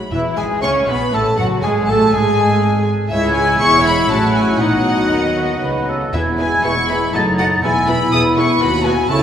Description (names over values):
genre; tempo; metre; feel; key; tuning
quick classical-period movement for symphony orchestra; 120 BPM; 3/4; straight; E major; A4 = 439 Hz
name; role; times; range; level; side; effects
warm studio violin section; melody; 0.0-9.2 s; E5 to D#6; -20 LUFS; left 2 dB; none
rich studio viola section; accompaniment; 0.0-9.2 s; E3 to F#4; -22 LUFS; right 1 dB; none
mellow large flute ensemble; second line; 0.1-9.2 s; E5 to A6; -22 LUFS; equal; none
mellow oboe; second line; 0.1-9.2 s; D#4 to C#5; -24 LUFS; right 1 dB; none
warm chamber violin section; second line; 0.1-9.2 s; E4 to D#5; -24 LUFS; left 3 dB; none
mellow French horn section; sustained chords; 0.1-9.2 s; E3 to A4; -21 LUFS; left 2 dB; none
dark studio cello section; bass; 0.1-9.2 s; C#2 to D#3; -22 LUFS; right 2 dB; none
dark studio double bass section; bass; 0.1-9.2 s; E1 to D#2; -24 LUFS; right 2 dB; none
timpani; percussion; 6.1-6.8 s; E2; -29 LUFS; equal; none
room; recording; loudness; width
wet church reverb, RT60 3.3 s; recorded in a church or concert hall; -13 LUFS; side -9 dB against mid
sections
0.1-9.2 A section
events
none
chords
0.1 E; 1.1 F#m; 1.6 N.C.; 3.1 C#m; 4.1 F#m7/A; 4.6 B; 6.1 E; 7.1 D#dim/F#; 7.6 E; 8.6 B/D#